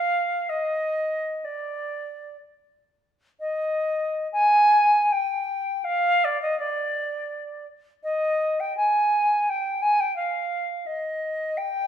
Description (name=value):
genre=classical, free, expressive piece for unaccompanied flute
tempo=50-88 BPM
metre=3/4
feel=rubato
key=unclear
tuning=A4 = 440 Hz
part: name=silver concert flute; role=solo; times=0.0-11.9 s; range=D5 to Ab5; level=-22 LUFS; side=equal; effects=none
room=moderate recital hall reverb, RT60 1.4 s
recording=minimal, uncompressed stereo recording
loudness=-22 LUFS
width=side -9 dB against mid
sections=0.0-3.4 A section; 3.4-11.9 B section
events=none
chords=none